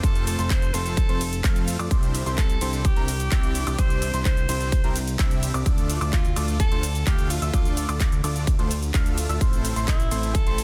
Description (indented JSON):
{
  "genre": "EDM, festival progressive house",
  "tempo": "128 BPM",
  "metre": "4/4",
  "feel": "straight",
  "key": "unclear",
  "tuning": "A4 = 438 Hz",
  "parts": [
    { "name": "raspy alto saxophone", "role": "melody", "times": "0.0-10.6 s", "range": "E4 to C5", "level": "-35 LUFS", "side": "equal", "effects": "delay" },
    { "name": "clear grand piano", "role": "arpeggios", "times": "0.0-10.6 s", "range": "Bb5 to F6", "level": "-37 LUFS", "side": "equal", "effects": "sidechain pumping, delay" },
    { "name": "dense compressed supersaw", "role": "riff", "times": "0.0-10.6 s", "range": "A3 to F5", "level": "-34 LUFS", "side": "equal", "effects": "sidechain pumping, delay" },
    { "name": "fat analog bass", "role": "bass", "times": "0.0-10.6 s", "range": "F1 to F2", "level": "-29 LUFS", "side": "equal", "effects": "sidechain pumping" },
    { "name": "big-room dance drum kit", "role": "drums", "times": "0.0-10.6 s", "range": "handclaps, hi-hat, ride cymbal, shaker", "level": "-34 LUFS", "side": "equal", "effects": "studio reverb" },
    { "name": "electronic kick drum", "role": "drums", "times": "0.0-10.4 s", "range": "none", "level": "-24 LUFS", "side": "equal", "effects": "studio reverb" }
  ],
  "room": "little or no reverb",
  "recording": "dense, heavily limited modern master",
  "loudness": "-23 LUFS",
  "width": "mono",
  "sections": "0.0-10.6 A section",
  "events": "none",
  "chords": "0.0 F; 1.9 Cadd9; 5.7 Dm; 9.4 Am"
}